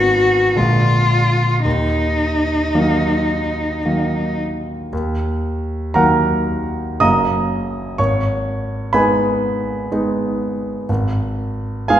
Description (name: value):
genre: classical, romantic duo for cello and grand piano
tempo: 54-63 BPM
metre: 3/4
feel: rubato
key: Eb minor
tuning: A4 = 440 Hz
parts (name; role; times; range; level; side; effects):
- rich cello; melody; 0.0-4.4 s; Eb4 to Gb4; -17 LUFS; left 1 dB; none
- warm concert grand piano; accompaniment; 0.0-12.0 s; Gb1 to Eb6; -17 LUFS; right 1 dB; none
room: wet recital hall reverb, RT60 1.7 s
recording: heard from further back in the room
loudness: -16 LUFS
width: side -11 dB against mid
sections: 0.0-4.9 A section; 4.9-12.0 B section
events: none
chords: 0.0 Abm7; 0.6 Bb7; 1.6 Ebm; 7.0 Gb; 8.0 Abm; 10.9 Fm/Ab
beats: 0.57 | 1.65 2.74 3.83 | 4.92 5.93 7.00 | 7.98 8.94 9.91 | 10.89 11.88